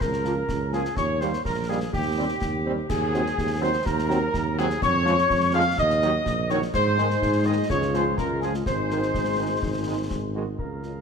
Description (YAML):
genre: military-style march for wind band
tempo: 125 BPM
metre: 2/4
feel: straight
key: unclear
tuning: A4 = 440 Hz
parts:
  - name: dark cornet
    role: melody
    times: 0.0-11.0 s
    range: Gb4 to F5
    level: -29 LUFS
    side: right 2 dB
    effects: none
  - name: mellow hollow small flute group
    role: second line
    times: 0.0-10.3 s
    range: G5 to F6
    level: -30 LUFS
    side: left 5 dB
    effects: none
  - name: mellow woodwind section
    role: second line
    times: 0.0-11.0 s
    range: G4 to F5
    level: -31 LUFS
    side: left 2 dB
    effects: none
  - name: mellow tuba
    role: bass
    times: 0.0-11.0 s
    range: Ab1 to Ab2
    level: -27 LUFS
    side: right 3 dB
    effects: none
  - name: concert snare drum, concert bass drum and clash cymbals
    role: drums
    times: 0.0-10.9 s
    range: none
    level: -33 LUFS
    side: left 1 dB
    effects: none
  - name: clear trombone section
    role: sustained chords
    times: 0.2-10.4 s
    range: Eb3 to C4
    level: -32 LUFS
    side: right 2 dB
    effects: none
  - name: dark French horn section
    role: accompaniment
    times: 0.3-10.9 s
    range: F3 to Bb4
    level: -32 LUFS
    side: left 6 dB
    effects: none
room: moderate recital hall reverb, RT60 1.6 s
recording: none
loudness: -22 LUFS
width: side -6 dB against mid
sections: 0.0-10.6 A section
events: none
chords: 0.0 Bbm/Db; 1.0 Eb; 1.9 Cm/Eb; 2.9 Ab7/Eb; 4.8 Db/F; 5.8 Ebm; 6.7 Ab; 7.7 Db; 8.7 Ab